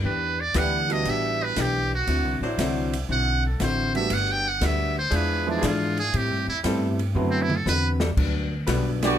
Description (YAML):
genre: jazz, big band swing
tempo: 118 BPM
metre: 4/4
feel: swing 69% on 8ths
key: G major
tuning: A4 = 442 Hz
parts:
  - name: vintage hollow-body jazz guitar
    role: accompaniment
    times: 0.0-9.0 s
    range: G2 to B4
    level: -29 LUFS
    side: left 4 dB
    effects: none
  - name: clear saxophone section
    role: sustained chords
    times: 0.0-8.9 s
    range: F3 to C5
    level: -31 LUFS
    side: left 1 dB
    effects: none
  - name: upright bass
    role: bass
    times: 0.0-9.2 s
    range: G1 to A2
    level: -26 LUFS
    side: equal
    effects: none
  - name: trumpet with metal mute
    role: melody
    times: 0.1-7.9 s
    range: C4 to G5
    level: -26 LUFS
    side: right 2 dB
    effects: none
  - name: open jazz drum kit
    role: drums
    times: 0.5-9.1 s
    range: crash cymbal, hi-hat, kick drum, ride cymbal, snare drum, toms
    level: -32 LUFS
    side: equal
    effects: none
  - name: warm grand piano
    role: accompaniment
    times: 0.9-7.5 s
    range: E3 to F#4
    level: -29 LUFS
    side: right 5 dB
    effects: none
  - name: clear trumpet section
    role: melody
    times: 9.0-9.2 s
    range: B3 to D5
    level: -22 LUFS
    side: right 2 dB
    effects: none
  - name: clear trombone section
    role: second line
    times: 9.0-9.2 s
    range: G3 to D4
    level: -24 LUFS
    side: right 4 dB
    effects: none
room: light reverb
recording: close, detailed microphones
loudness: -22 LUFS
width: side -10 dB against mid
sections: 0.0-8.2 A section; 8.2-9.2 B section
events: muted trumpet solo 0.0-8.2; drum fill 7.2-8.2; band accent 8.9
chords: 0.0 Em7; 2.1 D9; 4.1 Gmaj7; 5.1 E7b9; 6.1 Am7; 7.2 D13; 8.2 Gmaj7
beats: | 0.04 0.55 1.06 1.57 | 2.08 2.58 3.09 3.60 | 4.11 4.62 5.12 5.63 | 6.14 6.64 7.15 7.66 | 8.17 8.67 9.18